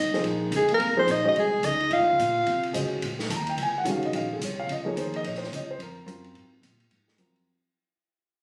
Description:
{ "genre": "modal jazz", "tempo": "216 BPM", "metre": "4/4", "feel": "swing 61% on 8ths", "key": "Eb dorian", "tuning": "A4 = 440 Hz", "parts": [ { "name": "warm soprano saxophone", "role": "melody", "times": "0.0-2.8 s", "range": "Ab4 to F5", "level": "-25 LUFS", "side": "equal", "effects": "plate reverb" }, { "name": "breathy trombone", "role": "second line", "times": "0.0-2.7 s", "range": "Ab3 to F4", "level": "-32 LUFS", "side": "equal", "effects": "none" }, { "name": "upright bass", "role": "bass", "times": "0.0-7.5 s", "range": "Gb1 to Db3", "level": "-37 LUFS", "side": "equal", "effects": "none" }, { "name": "warm concert grand piano", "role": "accompaniment", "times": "0.1-7.5 s", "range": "Eb3 to Bb5", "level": "-31 LUFS", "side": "equal", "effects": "none" }, { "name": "open jazz drum kit", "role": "drums", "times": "0.1-7.4 s", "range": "hi-hat, ride cymbal, snare drum", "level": "-39 LUFS", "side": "equal", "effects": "none" } ], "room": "moderate club reverb, RT60 0.8 s", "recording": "recorded on a phone in the room, studio reverb, compression", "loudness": "-26 LUFS", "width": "mono", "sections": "0.0-3.0 A section; 3.0-7.5 B section", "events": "fade-out 3.0-7.5", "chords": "0.0 Eb13sus4" }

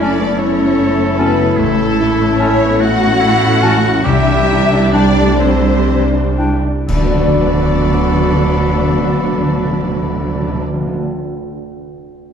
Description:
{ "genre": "cinematic, emotional film score for orchestra", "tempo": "38-52 BPM (dotted quarters)", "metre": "6/8", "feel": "rubato", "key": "D major", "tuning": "A4 = 440 Hz", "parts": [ { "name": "dark studio violin section", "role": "melody", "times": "0.0-10.6 s", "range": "A4 to F#5", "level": "-22 LUFS", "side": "left 4 dB", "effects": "none" }, { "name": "clear oboe", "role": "second line", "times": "0.0-10.6 s", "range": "C#4 to A4", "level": "-24 LUFS", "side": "equal", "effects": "none" }, { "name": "mellow clarinet", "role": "second line", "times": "0.0-10.6 s", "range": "C#4 to F#4", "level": "-25 LUFS", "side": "left 1 dB", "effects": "none" }, { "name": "mellow concert flute", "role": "second line", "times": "0.0-10.6 s", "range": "G5 to B5", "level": "-26 LUFS", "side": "equal", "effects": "none" }, { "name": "warm studio violin section", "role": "second line", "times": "0.0-10.6 s", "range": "A4 to F#5", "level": "-25 LUFS", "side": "left 3 dB", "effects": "none" }, { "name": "warm grand piano", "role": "accompaniment", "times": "0.0-12.3 s", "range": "A1 to D5", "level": "-21 LUFS", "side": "left 1 dB", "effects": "none" }, { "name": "warm studio viola section", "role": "accompaniment", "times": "0.0-10.6 s", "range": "F#3 to E4", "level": "-21 LUFS", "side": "right 2 dB", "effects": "none" }, { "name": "mellow French horn section", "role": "sustained chords", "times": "0.0-10.6 s", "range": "F#3 to E4", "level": "-21 LUFS", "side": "left 3 dB", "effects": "none" }, { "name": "concert harp", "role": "arpeggios", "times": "0.0-11.3 s", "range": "F#2 to D5", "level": "-23 LUFS", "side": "left 6 dB", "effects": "none" }, { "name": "warm studio cello section", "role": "bass", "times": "0.0-10.6 s", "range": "D3 to F#4", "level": "-22 LUFS", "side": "right 2 dB", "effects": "none" }, { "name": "warm studio double bass section", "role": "bass", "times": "0.0-10.6 s", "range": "F#1 to D2", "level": "-18 LUFS", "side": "right 4 dB", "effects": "none" }, { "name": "timpani", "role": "percussion", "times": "1.6-2.8, 6.9-11.0 s", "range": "A2 to D3", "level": "-20 LUFS", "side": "equal", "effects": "none" }, { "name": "clash cymbals and concert bass drum", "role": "percussion", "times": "6.9-8.8 s", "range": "none", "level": "-24 LUFS", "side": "equal", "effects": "none" } ], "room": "wet scoring stage reverb, RT60 2.1 s", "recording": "dark, warm production", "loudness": "-11 LUFS", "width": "side -7 dB against mid", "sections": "0.0-6.9 A section; 6.9-9.8 B section", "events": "slowing down 0.4-6.9; band accent 6.9-7.9", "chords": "0.0 F#m7; 1.6 A; 4.0 Cadd9; 6.9 D6" }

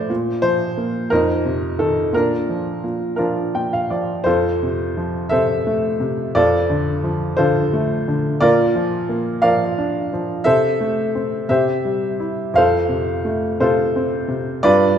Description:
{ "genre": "classical, lyrical solo piano", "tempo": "58 BPM (dotted quarters)", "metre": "6/8", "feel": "rubato", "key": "Bb major, F major from 4.3 s", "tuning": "A4 = 439 Hz", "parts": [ { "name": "warm upright piano", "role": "solo", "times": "0.0-15.0 s", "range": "F2 to G5", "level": "-16 LUFS", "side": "equal", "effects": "none" } ], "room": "moderate scoring stage reverb, RT60 1.9 s", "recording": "recorded in a church or concert hall", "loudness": "-17 LUFS", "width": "side -8 dB against mid", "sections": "0.0-4.3 A section; 4.3-15.0 B section", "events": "upright piano fill 3.2-4.3", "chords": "0.1 Bb5; 1.1 F5; 2.1 Bb; 4.3 F; 6.4 Dm/F; 8.4 Bb; 10.5 C6; 11.5 C; 12.5 F" }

